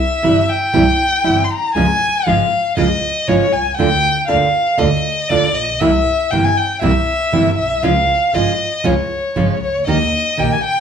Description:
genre	tango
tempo	118 BPM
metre	4/4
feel	rubato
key	unclear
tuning	A4 = 439 Hz
part	warm violin	second line	0.0-10.8 s	Db5 to C6	-16 LUFS	left 2 dB	none
part	nylon-string guitar	accompaniment	0.2-10.6 s	C3 to G4	-18 LUFS	right 3 dB	none
part	dark double bass	bass	0.2-10.6 s	G1 to Eb2	-21 LUFS	right 1 dB	none
room	moderate large studio reverb, RT60 0.9 s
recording	band playing live in one room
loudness	-13 LUFS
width	side -7 dB against mid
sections	0.0-10.8 A section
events	violin solo 0.0-10.8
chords	0.0 C; 1.8 Db; 3.8 Bb/D; 5.8 C7; 7.8 Db; 9.9 Eb

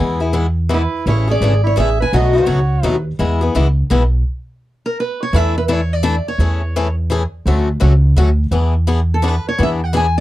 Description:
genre	acoustic string swing (jazz manouche)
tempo	169 BPM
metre	3/4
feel	swing 61% on 8ths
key	unclear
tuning	A4 = 438 Hz
part	picked swing-style acoustic guitar	accompaniment	0.0-10.1 s	B2 to A4	-18 LUFS	left 4 dB	none
part	upright bass	bass	0.0-10.2 s	G#1 to E2	-15 LUFS	equal	none
part	picked steel-string acoustic guitar	melody	0.7-6.9, 9.1-10.2 s	A4 to G#5	-20 LUFS	right 1 dB	none
part	breathy soprano saxophone	second line	0.7-3.0 s	E4 to B4	-23 LUFS	right 5 dB	none
room	little or no reverb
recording	dry, close 1970s-style studio recording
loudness	-14 LUFS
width	side -15 dB against mid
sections	0.0-5.3 A section; 5.3-10.2 B section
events	stop 4.3-5.3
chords	0.0 E; 1.1 Amaj7; 2.1 B7; 3.2 E; 4.3 N.C.; 5.3 E7sus4; 6.4 Amaj7/E; 7.5 Dmaj7; 8.5 E7

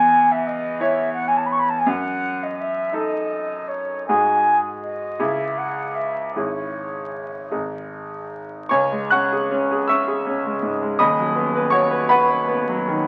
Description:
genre	classical, romantic duo for flute and grand piano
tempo	48-58 BPM (dotted quarters)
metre	6/8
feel	rubato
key	C# minor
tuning	A4 = 440 Hz
part	mellow concert flute	melody	0.0-7.5 s	C#5 to C#6	-23 LUFS	equal	none
part	bright concert grand piano	accompaniment	0.0-13.1 s	D#1 to F#6	-23 LUFS	equal	none
room	moderate large studio reverb, RT60 0.9 s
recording	very old 78 rpm record, vinyl crackle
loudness	-21 LUFS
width	mono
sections	0.0-8.7 A section; 8.7-13.1 B section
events	none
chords	0.0 C#m/E; 1.9 D#dim/F#; 4.1 D#madd11/G#; 5.2 C#m; 6.4 C#m/G#; 7.5 G#5; 8.7 C#m; 11.0 B/D#

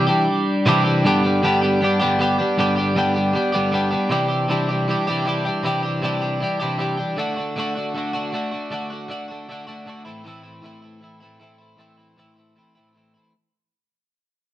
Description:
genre	rock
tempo	156 BPM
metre	4/4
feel	straight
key	G major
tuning	A4 = 439 Hz
part	twelve-string electric guitar	solo	0.0-13.3 s	G2 to G4	-19 LUFS	equal	none
room	wet stone room reverb, RT60 1.1 s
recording	band playing live in one room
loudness	-18 LUFS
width	side -13 dB against mid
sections	0.0-1.0 A section; 1.0-13.3 B section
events	fade-out 1.0-13.3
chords	0.0 Cadd9; 1.0 G; 4.1 Cadd9; 7.2 D; 10.1 Am

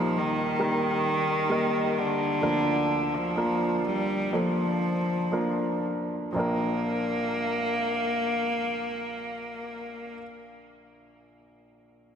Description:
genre	pop ballad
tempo	57-67 BPM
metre	4/4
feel	straight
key	Bb major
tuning	A4 = 443 Hz
part	bright cello	melody	0.0-10.2 s	D3 to Bb3	-28 LUFS	equal	none
part	clear baby grand piano	accompaniment	0.0-12.2 s	Bb1 to Eb5	-28 LUFS	equal	none
room	wet lush hall reverb, RT60 2.5 s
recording	dreamy mix soaked in reverb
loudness	-25 LUFS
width	side -8 dB against mid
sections	0.0-6.4 A section; 6.4-10.5 B section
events	slowing down 0.0-6.4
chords	0.0 Eb; 2.4 Bb/D; 6.4 Bb

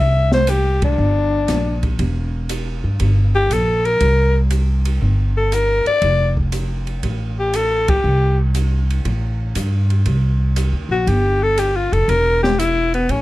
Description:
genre	jazz, small-group swing and bop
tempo	119 BPM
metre	4/4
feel	swing 69% on 8ths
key	C mixolydian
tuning	A4 = 443 Hz
part	growling alto saxophone	melody	0.0-13.2 s	B3 to E5	-17 LUFS	left 2 dB	none
part	upright bass	bass	0.0-13.2 s	E1 to G2	-17 LUFS	equal	none
part	open jazz drum kit	drums	0.3-13.2 s	hi-hat, kick drum, ride cymbal, snare drum	-26 LUFS	equal	none
room	little or no reverb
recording	dark, warm production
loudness	-15 LUFS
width	side -17 dB against mid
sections	0.0-13.2 A section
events	band accent 0.7, 7.8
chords	0.0 C9; 6.0 Fadd9; 10.1 C5; 12.1 N.C.

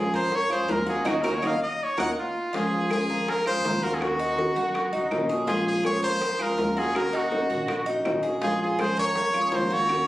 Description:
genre	latin, Cuban son and guajira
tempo	163 BPM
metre	4/4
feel	straight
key	Bb minor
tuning	A4 = 440 Hz
part	brilliant trumpet	melody	0.0-10.1 s	F4 to Gb5	-26 LUFS	equal	none
part	nylon-string guitar	accompaniment	0.0-10.1 s	Eb3 to Gb4	-29 LUFS	left 1 dB	none
part	Cuban tres	arpeggios	0.0-10.1 s	Eb4 to Bb4	-30 LUFS	right 1 dB	none
part	upright bass	bass	0.0-10.1 s	Bb1 to Gb2	-37 LUFS	equal	none
part	bongos	percussion	0.1-10.1 s	none	-34 LUFS	left 2 dB	none
part	claves	percussion	0.5-10.1 s	none	-38 LUFS	right 2 dB	none
room	moderate large studio reverb, RT60 0.9 s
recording	recorded on a phone in the room, club reverb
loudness	-23 LUFS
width	side -16 dB against mid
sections	0.0-2.5 A section; 2.5-10.1 B section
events	trumpet solo 0.0-2.5; band accent 1.1-2.5; drum fill 1.4-2.5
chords	0.0 Bbm7; 1.1 Ebm7; 2.5 Bbm7; 4.0 Ebm7; 5.5 Bbm7; 7.0 Ebm7; 8.4 Bbm7

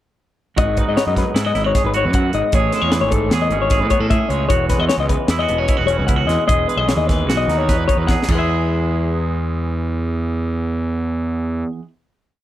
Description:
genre	math rock and midwest emo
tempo	152 BPM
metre	5/4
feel	straight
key	E major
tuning	A4 = 440 Hz
part	twangy electric guitar	accompaniment	0.6-11.9 s	E2 to B4	-23 LUFS	right 7 dB	none
part	clean electric guitar	arpeggios	0.6-11.7 s	G#4 to F#5	-21 LUFS	left 7 dB	spring reverb
part	fuzz picked electric bass	bass	0.6-11.6 s	E1 to A2	-20 LUFS	equal	overdrive
part	crisp fusion drum kit	drums	0.6-8.4 s	crash cymbal, hi-hat, kick drum, snare drum	-19 LUFS	equal	none
room	little or no reverb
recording	dry, close 1970s-style studio recording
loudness	-16 LUFS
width	side -13 dB against mid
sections	0.6-8.5 A section; 8.5-12.4 final hit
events	drum fill 8.1-8.5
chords	0.6 G#m7; 2.5 Amaj7; 4.5 E69; 8.3 E

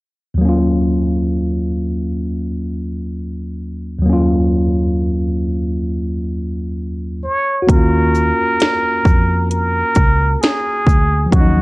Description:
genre	lo-fi hip hop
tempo	66 BPM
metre	4/4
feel	swing 61% on 16ths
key	Eb minor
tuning	A4 = 439 Hz
part	tine electric piano	accompaniment	0.3-11.6 s	Eb2 to Gb4	-17 LUFS	equal	cassette tape
part	trumpet with plunger mute	melody	7.2-11.6 s	Gb4 to Db5	-17 LUFS	right 1 dB	none
part	vintage muted fingered electric bass	bass	7.7-11.6 s	Db2 to F2	-16 LUFS	equal	none
part	house drum kit	drums	7.7-11.6 s	hi-hat, kick drum, shaker, snare drum	-14 LUFS	equal	none
room	little or no reverb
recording	cassette tape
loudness	-14 LUFS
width	side -22 dB against mid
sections	0.4-7.7 A section; 7.7-11.6 B section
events	none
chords	0.4 Ebm9; 7.2 N.C.; 7.7 Ebm9

